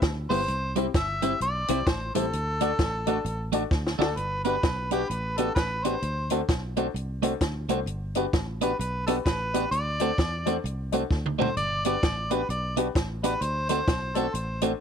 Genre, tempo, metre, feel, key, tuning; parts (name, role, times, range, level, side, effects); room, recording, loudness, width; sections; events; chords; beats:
ska; 130 BPM; 4/4; swing 61% on 8ths; G major; A4 = 443 Hz
dark upright piano; stabs; 0.0-14.7 s; B3 to D5; -30 LUFS; left 12 dB
fingered electric bass; bass; 0.0-14.7 s; G1 to E2; -32 LUFS; equal
compact cocktail drum kit; drums; 0.0-14.7 s; hi-hat, kick drum, snare drum, toms; -28 LUFS; equal
mellow harmonica; melody; 0.3-14.6 s; G4 to E5; -29 LUFS; equal
clean electric guitar; accompaniment; 0.3-14.7 s; G3 to F#4; -29 LUFS; right 16 dB
light reverb, small room ambience; 1960s-style stereo with parts hard left and right; -24 LUFS; side -7 dB against mid
0.0-4.2 A section; 4.2-14.8 B section
drum fill 3.7-4.2, 11.1-11.6
0.5 C; 2.3 D; 4.2 Gmaj7; 6.0 D7; 7.9 Gmaj7; 9.7 D7; 11.6 Gmaj7; 13.4 D7
0.02 | 0.48 0.94 1.41 1.87 | 2.33 2.79 3.25 3.72 | 4.18 4.64 5.10 5.56 | 6.03 6.49 6.95 7.41 | 7.87 8.34 8.80 9.26 | 9.72 10.18 10.64 11.11 | 11.57 12.03 12.49 12.96 | 13.42 13.88 14.34